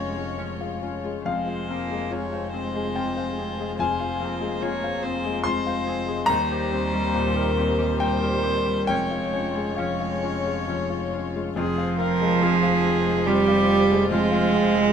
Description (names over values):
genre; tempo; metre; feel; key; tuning
neoclassical piano and strings; 70 BPM; 3/4; rubato; F minor; A4 = 440 Hz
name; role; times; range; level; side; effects
rich cello; second line; 0.0-14.9 s; F3 to Bb3; -26 LUFS; right 4 dB; none
rich viola; accompaniment; 0.0-14.9 s; F4 to Db5; -29 LUFS; right 1 dB; none
warm grand piano; accompaniment; 0.0-14.9 s; Eb2 to C6; -27 LUFS; left 4 dB; none
warm chamber string section; sustained chords; 0.0-14.9 s; F3 to Db5; -34 LUFS; left 3 dB; none
concert harp; arpeggios; 0.0-14.9 s; Db4 to Ab5; -33 LUFS; left 1 dB; none
warm double bass; bass; 0.0-14.9 s; F1 to Eb2; -32 LUFS; equal; none
room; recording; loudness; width
moderate large studio reverb, RT60 0.9 s; minimal, uncompressed stereo recording; -21 LUFS; side -8 dB against mid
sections
0.0-11.6 A section; 11.6-14.9 B section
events
none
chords
0.0 Db/F; 1.3 Fm; 6.3 Eb6; 8.9 Db/F; 11.6 Fm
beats
0.39 | 1.26 2.11 2.96 | 3.79 4.62 5.46 | 6.29 7.14 8.01 | 8.89 9.78 10.68 | 11.56 12.42 13.27 | 14.11